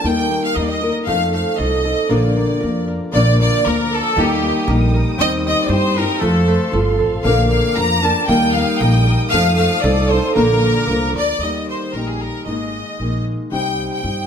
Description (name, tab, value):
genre	mexican folk, mariachi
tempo	116 BPM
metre	2/4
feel	straight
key	Bb major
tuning	A4 = 439 Hz
part	clear studio violin section	melody	0.0-14.3 s	G4 to Bb5	-20 LUFS	left 1 dB	none
part	nylon-string guitar	accompaniment	0.0-14.3 s	Bb2 to Bb4	-20 LUFS	left 3 dB	none
part	concert harp	arpeggios	0.0-13.8 s	A3 to C5	-23 LUFS	right 4 dB	none
part	upright bass	bass	0.0-14.3 s	G1 to G2	-19 LUFS	equal	none
part	muted symphonic violin section	sustained chords	3.1-11.4 s	A4 to Eb6	-30 LUFS	left 1 dB	none
room	moderate recital hall reverb, RT60 1.6 s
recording	none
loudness	-14 LUFS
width	side -8 dB against mid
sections	0.0-3.1 A section; 3.1-11.4 A section; 11.4-14.3 B section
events	none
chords	0.0 Eb; 1.1 F7; 2.1 Bb; 4.2 Eb; 5.2 Cm/Eb; 6.2 F; 7.3 Bb; 8.3 Eb; 9.3 F7; 10.3 Bb; 11.4 Eb; 12.5 Absus2; 13.5 Cm